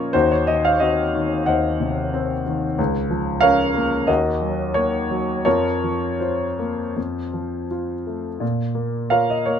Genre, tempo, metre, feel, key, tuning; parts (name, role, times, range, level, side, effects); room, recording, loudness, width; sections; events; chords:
classical, romantic character piece for solo piano; 78-95 BPM; 4/4; rubato; Bb minor; A4 = 441 Hz
warm grand piano; solo; 0.0-9.6 s; Db2 to Gb5; -19 LUFS; left 1 dB
light reverb; close, detailed microphones; -19 LUFS; side -8 dB against mid
0.0-9.6 A section
0.1 Cdim/Eb; 2.8 Bbm/Db; 4.1 Ebm; 5.5 Fsus4; 7.0 F; 8.4 Bbm